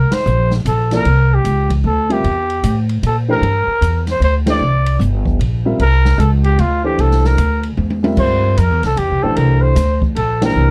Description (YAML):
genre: modal jazz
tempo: 152 BPM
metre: 3/4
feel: swing 64% on 8ths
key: C mixolydian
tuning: A4 = 440 Hz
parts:
  - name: growling trumpet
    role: melody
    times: 0.0-10.7 s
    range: F4 to D5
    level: -20 LUFS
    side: equal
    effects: none
  - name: upright bass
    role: bass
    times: 0.0-10.7 s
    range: G1 to Bb2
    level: -17 LUFS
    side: equal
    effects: none
  - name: open jazz drum kit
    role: drums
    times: 0.1-10.5 s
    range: crash cymbal, hi-hat, kick drum, ride cymbal, snare drum, toms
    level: -27 LUFS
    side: equal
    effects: none
  - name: warm grand piano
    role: accompaniment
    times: 0.9-10.7 s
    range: E3 to E5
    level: -21 LUFS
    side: equal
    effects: none
room: little or no reverb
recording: dark, warm production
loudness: -15 LUFS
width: mono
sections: 0.0-10.7 A section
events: band accent 0.1, 4.4, 10.4; drum fill 7.8-8.2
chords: 0.0 C9